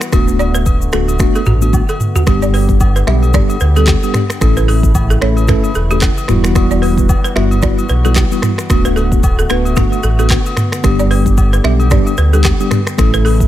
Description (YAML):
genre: afrobeats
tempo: 112 BPM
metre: 4/4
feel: swing 58% on 16ths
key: unclear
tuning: A4 = 438 Hz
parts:
  - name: warm analog pad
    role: sustained chords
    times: 0.0-13.5 s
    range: C#3 to G4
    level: -24 LUFS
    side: left 2 dB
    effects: chorus, sidechain pumping
  - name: afro-pop drum kit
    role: drums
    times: 0.0-13.5 s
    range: finger snaps, handclaps, hi-hat, kick drum, rim click, shaker, toms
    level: -14 LUFS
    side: equal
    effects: none
  - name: mellow tine electric piano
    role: accompaniment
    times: 0.1-13.5 s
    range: G3 to A4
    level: -18 LUFS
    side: left 1 dB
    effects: medium stereo tremolo
  - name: sub bass with octave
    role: bass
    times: 0.1-13.5 s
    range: D1 to D2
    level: -13 LUFS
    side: equal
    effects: none
  - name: agogo bells and woodblock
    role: percussion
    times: 0.1-13.4 s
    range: none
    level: -26 LUFS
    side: left 4 dB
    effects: none
  - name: balafon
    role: riff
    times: 0.4-13.3 s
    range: F#4 to E5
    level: -22 LUFS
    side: right 4 dB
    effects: digital delay
room: digital ambience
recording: none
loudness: -10 LUFS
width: side -13 dB against mid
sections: 0.0-2.3 A section; 2.3-13.5 B section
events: drum fill 1.7-2.3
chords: 0.1 D6; 2.3 G; 4.4 A; 6.3 Emadd9; 8.7 D6; 10.8 G